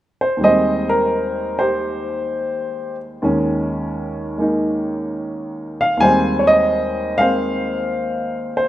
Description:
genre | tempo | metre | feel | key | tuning
solo jazz | 86 BPM | 4/4 | swing 67% on 8ths | Ab major | A4 = 441 Hz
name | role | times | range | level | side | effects
warm grand piano | solo | 0.2-8.7 s | Eb2 to Ab5 | -17 LUFS | equal | none
room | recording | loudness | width
moderate lush hall reverb, RT60 2.5 s | rough home demo mix | -17 LUFS | side -13 dB against mid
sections
0.4-8.7 A section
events
none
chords
0.4 Abmaj9/Eb; 3.2 Eb7sus4; 6.0 Abmaj9/Eb

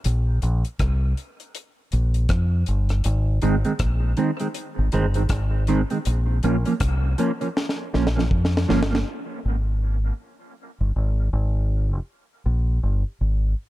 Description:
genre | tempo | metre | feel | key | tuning
dub reggae | 80 BPM | 4/4 | swing 60% on 16ths | Bb dorian | A4 = 439 Hz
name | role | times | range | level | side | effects
deep reggae drum kit | drums | 0.0-9.1 s | hi-hat, kick drum, rim click, snare drum | -26 LUFS | equal | none
deep dub fingered electric bass | bass | 0.1-13.5 s | G1 to F2 | -21 LUFS | equal | none
mellow electric guitar | accompaniment | 3.4-9.0 s | Eb3 to Db4 | -24 LUFS | right 2 dB | phaser, high-pass filter, dub echo
room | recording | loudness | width
small room ambience | dark, warm production | -20 LUFS | side -16 dB against mid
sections
0.0-9.1 A section; 9.1-13.7 B section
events
break 0.0-3.0, 9.1-13.7; drum fill 7.6-9.1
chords
0.0 Bb5; 3.0 Ab; 6.1 Bbm; 9.1 N.C.; 12.1 Gm

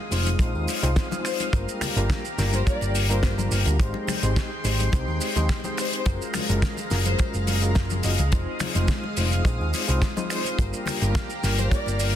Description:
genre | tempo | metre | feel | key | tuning
nu-disco, nu disco | 106 BPM | 4/4 | straight | F dorian | A4 = 440 Hz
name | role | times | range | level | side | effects
lush unison pad | sustained chords | 0.0-12.2 s | Ab3 to Eb6 | -32 LUFS | equal | chorus, sidechain pumping
overdriven reed electric piano | accompaniment | 0.1-12.1 s | G3 to Eb5 | -31 LUFS | left 1 dB | fast tremolo, sidechain pumping, ping-pong delay
picked electric bass with an envelope filter | bass | 0.1-12.2 s | F1 to Eb2 | -24 LUFS | equal | none
damped 70s drum kit | drums | 0.1-12.1 s | finger snaps, hi-hat, shaker, snare drum | -29 LUFS | left 2 dB | studio reverb
tambourine and congas | percussion | 0.1-12.1 s | none | -36 LUFS | left 6 dB | none
kick drum | drums | 0.4-11.8 s | none | -23 LUFS | equal | studio reverb
dark studio violin section | melody | 1.3-12.0 s | C5 to D5 | -33 LUFS | left 3 dB | ping-pong delay
room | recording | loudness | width
studio ambience | dense, heavily limited modern master | -22 LUFS | side -11 dB against mid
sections
0.0-12.2 A section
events
none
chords
0.0 Fm7; 1.5 Gm7; 3.8 Abmaj7; 6.1 Gbmaj9; 8.3 Fm7; 10.6 Gm7

